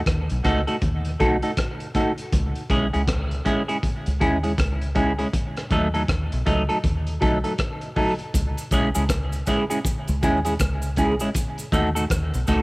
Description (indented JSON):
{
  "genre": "dub reggae",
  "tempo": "80 BPM",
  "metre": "4/4",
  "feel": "swing 61% on 16ths",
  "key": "C# minor",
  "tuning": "A4 = 440 Hz",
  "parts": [
    { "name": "deep dub fingered electric bass", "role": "bass", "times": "0.1-12.6 s", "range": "B1 to D#2", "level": "-25 LUFS", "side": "equal", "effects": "none" },
    { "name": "crunchy breakbeat drum kit", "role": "drums", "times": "0.1-12.6 s", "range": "hi-hat, kick drum, rim click", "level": "-26 LUFS", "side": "equal", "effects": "cassette tape" },
    { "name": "semi-hollow electric guitar", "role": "accompaniment", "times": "0.4-12.6 s", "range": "F#3 to A4", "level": "-24 LUFS", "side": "equal", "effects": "phaser, cassette tape, dub echo" },
    { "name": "cabasa", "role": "percussion", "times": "8.3-12.6 s", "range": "none", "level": "-37 LUFS", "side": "right 2 dB", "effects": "none" }
  ],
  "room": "light reverb, small room ambience",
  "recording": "home recording on cassette",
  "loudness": "-20 LUFS",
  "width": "side -22 dB against mid",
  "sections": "0.0-12.6 A section",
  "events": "none",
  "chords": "0.0 D#dim; 2.3 C#m; 5.3 D#dim; 8.3 C#m; 11.3 D#dim",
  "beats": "0.06 0.82 1.57 | 2.32 3.08 3.83 4.58 | 5.33 6.09 6.84 7.59 | 8.34 9.10 9.85 10.60 | 11.35 12.10"
}